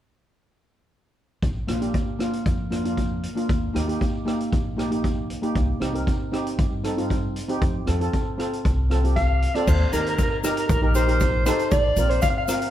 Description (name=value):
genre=calypso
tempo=116 BPM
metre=4/4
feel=straight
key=Bb major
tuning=A4 = 438 Hz
part: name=upright bass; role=bass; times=1.4-12.2 s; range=Bb1 to G2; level=-24 LUFS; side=equal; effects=none
part: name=street-band drum kit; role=drums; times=1.4-12.7 s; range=crash cymbal, hi-hat, kick drum, rim click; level=-26 LUFS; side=equal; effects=none
part: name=steel pan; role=accompaniment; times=1.7-12.7 s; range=Bb3 to Bb4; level=-26 LUFS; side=right 1 dB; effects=none
part: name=mellow soprano saxophone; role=melody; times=9.2-12.7 s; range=Bb4 to F5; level=-24 LUFS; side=left 1 dB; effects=none
part: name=egg shaker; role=percussion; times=9.7-12.7 s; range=none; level=-37 LUFS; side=left 5 dB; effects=none
room=light reverb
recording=heard from further back in the room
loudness=-21 LUFS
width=side -12 dB against mid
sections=1.4-9.7 A section; 9.7-12.7 B section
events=none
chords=1.4 Bb; 3.5 Eb; 5.6 Cm; 7.6 F; 9.7 Eb; 11.7 Bbsus2